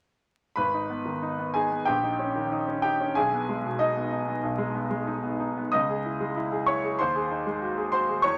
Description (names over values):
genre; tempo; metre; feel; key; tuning
classical, virtuoso piano study; 94 BPM; 4/4; rubato; G# minor; A4 = 440 Hz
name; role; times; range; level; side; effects
clear grand piano; solo; 0.6-8.4 s; G#1 to D#6; -27 LUFS; equal; none
room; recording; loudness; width
wet studio ambience, RT60 0.5 s; vinyl crackle; -27 LUFS; mono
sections
0.6-8.4 A section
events
none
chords
0.6 G#m; 1.9 D#7/A#; 3.2 G#m/B; 5.7 C#m; 7.0 G#7/D#